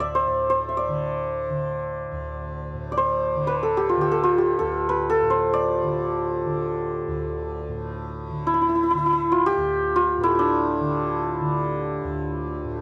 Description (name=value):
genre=indian classical, Hindustani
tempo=free time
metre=none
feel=none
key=D raga kafi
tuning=A4 = 441 Hz
part: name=santur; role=melody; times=0.0-12.8 s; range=D4 to E5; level=-24 LUFS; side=equal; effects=none
part: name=tanpura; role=drone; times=0.0-12.8 s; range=D2 to D3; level=-34 LUFS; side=equal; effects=none
room=little or no reverb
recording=dry, close 1970s-style studio recording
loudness=-24 LUFS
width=mono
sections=0.0-12.8 A section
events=none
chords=none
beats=free time